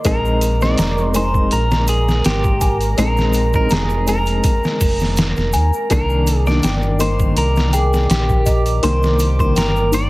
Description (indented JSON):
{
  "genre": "trip hop",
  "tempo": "82 BPM",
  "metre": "4/4",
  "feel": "swing 53% on 16ths",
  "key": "unclear",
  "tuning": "A4 = 440 Hz",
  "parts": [
    { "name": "dark upright piano", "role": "accompaniment", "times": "0.0-10.1 s", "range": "Eb3 to Eb4", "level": "-22 LUFS", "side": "left 1 dB", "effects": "tremolo" },
    { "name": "dark analog pad", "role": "sustained chords", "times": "0.0-10.1 s", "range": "Bb4 to D6", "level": "-25 LUFS", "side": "right 2 dB", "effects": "chorus, phaser, vintage 12-bit sampler grit" },
    { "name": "celesta", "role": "arpeggios", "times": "0.0-10.1 s", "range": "Eb4 to Bb5", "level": "-27 LUFS", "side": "left 1 dB", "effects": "tape echo" },
    { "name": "trip hop sampler-style drum kit", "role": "drums", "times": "0.0-10.1 s", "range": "hi-hat, kick drum, snare drum", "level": "-19 LUFS", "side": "equal", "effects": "none" },
    { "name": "egg shaker", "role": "percussion", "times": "0.0-10.1 s", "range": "none", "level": "-33 LUFS", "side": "right 4 dB", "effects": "none" },
    { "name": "clean electric guitar", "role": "melody", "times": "0.1-10.1 s", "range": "G4 to D5", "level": "-22 LUFS", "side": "equal", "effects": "tape echo" },
    { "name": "round analog bass", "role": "bass", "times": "0.1-10.1 s", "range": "F1 to Eb2", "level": "-18 LUFS", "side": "equal", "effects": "none" }
  ],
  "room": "light reverb",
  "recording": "heavily compressed radio sound",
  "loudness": "-14 LUFS",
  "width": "side -20 dB against mid",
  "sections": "0.0-10.1 A section",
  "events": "none",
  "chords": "0.1 Bb7sus4; 5.9 Cm9"
}